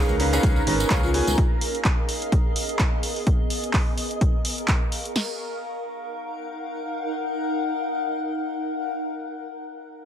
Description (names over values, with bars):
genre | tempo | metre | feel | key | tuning
piano house | 127 BPM | 4/4 | swing 56% on 16ths | Eb minor | A4 = 442 Hz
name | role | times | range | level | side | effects
vibraphone with soft mallets | melody | 0.0-1.4 s | F4 | -30 LUFS | equal | tape echo
analog string pad | sustained chords | 0.0-5.2 s | Bb4 to Bb5 | -34 LUFS | right 2 dB | ensemble chorus, sidechain pumping
bright concert grand piano | riff | 0.0-1.4 s | Cb4 to Bb5 | -27 LUFS | equal | vintage 12-bit sampler grit, sidechain pumping, tape echo
solid FM bass | bass | 0.0-1.3 s | Ab1 to Db2 | -25 LUFS | equal | sidechain pumping
downlifter | sound effects | 0.0-1.4 s | none | barely audible | none | none
granular cloud pad | texture | 0.0-8.8 s | Cb4 to Gb5 | -29 LUFS | left 1 dB | built-in reverb, sidechain pumping
tambourine | percussion | 0.1-1.4 s | none | -33 LUFS | right 4 dB | none
punchy analog drum machine | drums | 0.2-5.1 s | handclaps, hi-hat | -28 LUFS | right 1 dB | none
house drum kit | drums | 0.4-5.3 s | crash cymbal, kick drum, snare drum | -22 LUFS | equal | none
room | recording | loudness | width
light reverb, digital ambience | none | -22 LUFS | side -9 dB against mid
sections
0.0-5.2 A section; 5.2-8.9 B section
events
filter sweep on analog synth pad 0.0-5.2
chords
0.0 Db7; 1.4 Abm; 5.2 Ebm